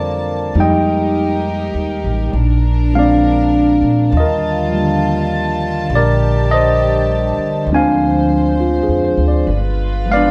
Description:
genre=jazz ballad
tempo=67 BPM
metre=4/4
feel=swing 67% on 8ths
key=Bb major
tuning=A4 = 442 Hz
part: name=bright tine electric piano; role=accompaniment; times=0.0-10.3 s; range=D3 to Ab5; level=-18 LUFS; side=equal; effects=none
part: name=dark symphonic string section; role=sustained chords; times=0.0-10.3 s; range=D3 to A5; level=-23 LUFS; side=equal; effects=none
part: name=upright bass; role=bass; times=0.0-10.3 s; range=G1 to Bb2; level=-20 LUFS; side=equal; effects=none
room=wet large studio reverb, RT60 1.1 s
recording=band playing live in one room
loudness=-15 LUFS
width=mono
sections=0.0-10.3 A section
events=none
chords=0.0 Bbmaj9; 0.6 Fm11; 2.3 Bb7; 4.1 Ebmaj9#11; 7.7 Dm7b5; 9.5 G7b9

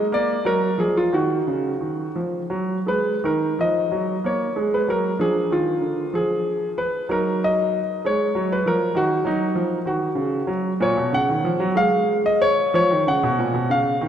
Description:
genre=classical, baroque-style suite movement for grand piano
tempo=53-67 BPM (dotted quarters)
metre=6/8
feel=rubato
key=Eb minor, F# major from 10.8 s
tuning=A4 = 444 Hz
part: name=warm concert grand piano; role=solo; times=0.0-14.1 s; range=A#2 to F#5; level=-19 LUFS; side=equal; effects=none
room=wet church reverb, RT60 3.5 s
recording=none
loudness=-19 LUFS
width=side -9 dB against mid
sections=0.0-3.2 A section; 3.2-14.1 B section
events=none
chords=0.1 Bb5; 1.1 Ebm; 5.2 Ddim7; 7.1 Ebm/Gb; 9.0 Ebm; 10.8 F#/A#; 11.8 N.C.; 12.7 C#

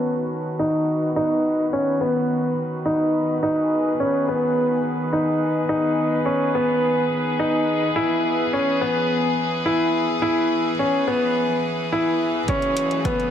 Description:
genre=piano and strings electronica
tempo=106 BPM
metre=4/4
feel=straight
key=unclear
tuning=A4 = 441 Hz
part: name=rich chamber string section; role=sustained chords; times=0.0-13.3 s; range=D#3 to B4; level=-24 LUFS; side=equal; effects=sidechain pumping
part: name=clear grand piano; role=riff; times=0.0-13.3 s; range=B3 to E4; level=-21 LUFS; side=equal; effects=low-pass filter, ping-pong delay
part: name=muted symphonic double bass section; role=bass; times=12.5-13.3 s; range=F#1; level=-35 LUFS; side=equal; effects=sidechain pumping, high-pass filter
part: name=electronic hi-hat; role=drums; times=12.5-13.3 s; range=none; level=-34 LUFS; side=left 2 dB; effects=overdrive, low-pass filter on hats
part: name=electronic kick drum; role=drums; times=12.5-13.2 s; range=none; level=-26 LUFS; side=right 1 dB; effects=overdrive
room=moderate recital hall reverb, RT60 1.4 s, small room reverb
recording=low-pass filter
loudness=-19 LUFS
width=side -9 dB against mid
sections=0.0-12.5 A section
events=filter sweep on grand piano 0.0-12.5; filter sweep 0.0-12.5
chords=0.0 B; 3.4 G#m; 8.0 E; 12.5 F#m7

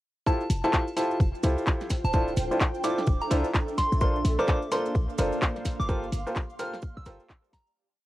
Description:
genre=UK garage, two-step garage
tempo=128 BPM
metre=4/4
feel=swing 61% on 16ths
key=F major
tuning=A4 = 440 Hz
part: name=soft synth bell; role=melody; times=0.3-7.7 s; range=A5 to F6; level=-32 LUFS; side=equal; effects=chorus, phaser, cassette tape, tape echo
part: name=bright baby grand piano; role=stabs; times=0.3-7.2 s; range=D4 to C5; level=-29 LUFS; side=equal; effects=none
part: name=electronic kick drum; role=drums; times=0.3-7.6 s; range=none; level=-26 LUFS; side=equal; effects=cassette tape
part: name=cabasa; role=percussion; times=0.3-7.7 s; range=none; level=-48 LUFS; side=right 10 dB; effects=none
part: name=ethereal airy pad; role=texture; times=1.1-7.8 s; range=Bb3 to C6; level=-35 LUFS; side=equal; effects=ensemble chorus, built-in reverb, tremolo, sidechain pumping
part: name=short 808-style bass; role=bass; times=0.5-7.2 s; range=D1 to C2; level=-27 LUFS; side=equal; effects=none
part: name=garage drum kit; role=drums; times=0.5-7.6 s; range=handclaps, hi-hat, snare drum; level=-30 LUFS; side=equal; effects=cassette tape
room=moderate booth ambience, RT60 0.2 s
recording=home recording on cassette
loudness=-24 LUFS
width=side -16 dB against mid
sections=0.3-7.8 groove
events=fade-out 5.3-7.8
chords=0.3 Fmaj9; 1.9 Dm9; 4.0 Bbmaj9; 5.9 Gm11

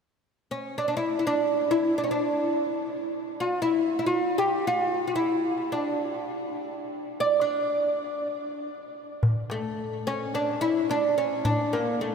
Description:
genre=Arabic maqam ensemble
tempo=free time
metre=none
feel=none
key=D maqam suznak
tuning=A4 = 440 Hz
part: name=oud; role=melody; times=0.5-12.1 s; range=A3 to D5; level=-25 LUFS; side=equal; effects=tape echo
part: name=darbuka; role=percussion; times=9.2-12.1 s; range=none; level=-29 LUFS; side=left 1 dB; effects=none
room=wet huge ambient reverb, RT60 7.3 s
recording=dreamy mix soaked in reverb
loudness=-24 LUFS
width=side -6 dB against mid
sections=0.3-9.2 A section; 9.2-12.1 B section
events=none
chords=none

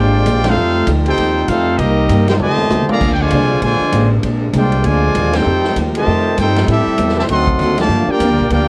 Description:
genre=jazz, big band swing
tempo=196 BPM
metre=4/4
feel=swing 61% on 8ths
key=F major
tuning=A4 = 440 Hz
part: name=brilliant trumpet section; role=melody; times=0.0-8.7 s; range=C4 to C6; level=-20 LUFS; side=equal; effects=none
part: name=dark trombone section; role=second line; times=0.0-8.7 s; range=C3 to G4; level=-21 LUFS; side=equal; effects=plate reverb
part: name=picked steel-string acoustic guitar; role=accompaniment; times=0.0-8.7 s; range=G2 to G4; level=-24 LUFS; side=equal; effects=plate reverb
part: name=warm trombone section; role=sustained chords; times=0.0-8.7 s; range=C3 to F4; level=-27 LUFS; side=equal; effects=none
part: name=upright bass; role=bass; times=0.0-8.7 s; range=Ab1 to A2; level=-20 LUFS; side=equal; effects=none
part: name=swinging big-band drum kit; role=drums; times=0.3-8.6 s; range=crash cymbal, hi-hat, kick drum, ride cymbal, snare drum, toms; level=-25 LUFS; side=equal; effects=none
room=moderate studio reverb, RT60 0.6 s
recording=worn, warbling old tape, cassette tape, warbly pitch drift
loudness=-14 LUFS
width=mono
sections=0.0-8.7 A section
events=band accent 0.4, 5.3, 7.7; drum fill 2.4-3.0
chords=0.0 Bb9; 0.6 F9; 1.8 Cm7; 2.4 F9; 3.0 Bb9; 5.5 F9; 6.7 Am7; 7.3 D7b9; 7.9 Gm7

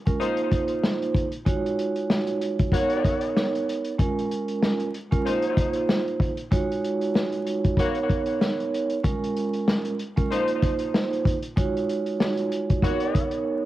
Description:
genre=hip hop, boom-bap hip-hop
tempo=95 BPM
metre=4/4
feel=swing 56% on 16ths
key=Bb minor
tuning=A4 = 439 Hz
part: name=vibraphone with soft mallets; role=accompaniment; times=0.1-13.7 s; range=Ab3 to Db5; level=-25 LUFS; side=right 3 dB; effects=cassette tape, high-pass filter, low-pass filter
part: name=vintage drum kit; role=drums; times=0.1-13.4 s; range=hi-hat, kick drum, snare drum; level=-24 LUFS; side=left 1 dB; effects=cassette tape
part: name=warm horn section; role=stabs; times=0.2-13.2 s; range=F3 to C#5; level=-31 LUFS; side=left 7 dB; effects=high-pass filter, low-pass filter, cassette tape, tape echo
room=light reverb, studio reverb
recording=home recording on cassette, vinyl crackle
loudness=-22 LUFS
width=side -15 dB against mid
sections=0.0-13.7 A section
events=none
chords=0.2 F7sus4; 1.5 Ebm11; 2.7 Bmaj9; 4.0 Bbm7; 5.3 F7sus4; 6.5 Ebm11; 7.8 Bmaj9; 9.0 Bbm7; 10.3 F7sus4; 11.6 Ebm11; 12.8 Bmaj9

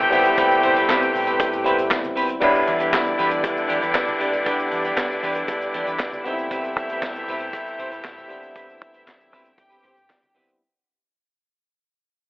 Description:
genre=disco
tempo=117 BPM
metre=4/4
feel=straight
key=A minor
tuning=A4 = 440 Hz
part: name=clear studio string section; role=second line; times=0.0-10.3 s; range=D4 to G5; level=-26 LUFS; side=equal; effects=none
part: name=barky tine electric piano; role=accompaniment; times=0.0-10.6 s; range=G3 to G4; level=-26 LUFS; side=left 1 dB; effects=none
part: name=clean electric guitar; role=accompaniment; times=0.0-10.5 s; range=C4 to D5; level=-25 LUFS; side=equal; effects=none
part: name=muted French horn section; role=sustained chords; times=0.0-10.6 s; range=C3 to B4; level=-24 LUFS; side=equal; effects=none
part: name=deep dub fingered electric bass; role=bass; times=0.0-10.5 s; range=D#1 to E3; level=-36 LUFS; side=equal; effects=none
part: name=vintage drum kit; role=drums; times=0.0-10.6 s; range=crash cymbal, handclaps, hi-hat, kick drum, snare drum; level=-26 LUFS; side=equal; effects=none
part: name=congas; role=percussion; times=0.0-10.5 s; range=none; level=-44 LUFS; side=left 1 dB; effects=none
part: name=tube shaker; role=percussion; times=0.1-10.6 s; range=none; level=-55 LUFS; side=right 2 dB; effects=none
room=moderate plate reverb, RT60 1.4 s, small room ambience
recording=telephone sound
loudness=-19 LUFS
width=side -23 dB against mid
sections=0.0-2.4 A section; 2.4-10.6 B section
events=fade-out 2.4-10.6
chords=0.0 Am9; 2.4 Em7; 6.3 Am9

